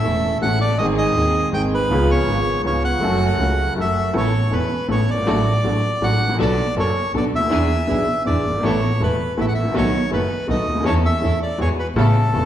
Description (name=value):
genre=tango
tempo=161 BPM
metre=3/4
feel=rubato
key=F# minor, A major from 4.1 s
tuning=A4 = 440 Hz
part: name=bandoneon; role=melody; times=0.0-12.5 s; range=A4 to G5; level=-22 LUFS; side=right 1 dB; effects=none
part: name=clear upright piano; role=accompaniment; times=0.0-12.5 s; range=D#1 to A4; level=-21 LUFS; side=left 1 dB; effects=none
part: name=dark studio string section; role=stabs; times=0.0-12.5 s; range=A3 to A4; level=-28 LUFS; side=right 2 dB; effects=none
part: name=dark double bass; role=bass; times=0.0-12.5 s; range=E1 to E2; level=-22 LUFS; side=equal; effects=none
room=wet recital hall reverb, RT60 1.4 s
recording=recorded in a church or concert hall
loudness=-17 LUFS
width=side -11 dB against mid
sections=0.0-4.1 A section; 4.1-12.5 B section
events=none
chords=0.0 A; 0.8 G#; 1.9 C#7; 3.0 F#m; 4.1 Aadd9; 5.3 D/A; 6.4 Bm7; 7.5 E7; 8.6 Asus2; 9.7 B7; 10.9 A/E; 11.6 Eadd9